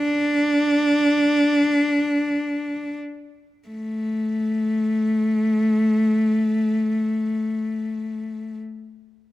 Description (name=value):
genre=celtic folk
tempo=free time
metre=none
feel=none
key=unclear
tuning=A4 = 439 Hz
part: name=warm cello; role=solo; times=0.0-8.6 s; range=A3 to D4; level=-19 LUFS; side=equal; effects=none
room=light reverb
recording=close, detailed microphones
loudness=-19 LUFS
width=side -16 dB against mid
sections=0.0-3.7 A section; 3.7-7.9 B section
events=slowing down 0.0-3.7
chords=none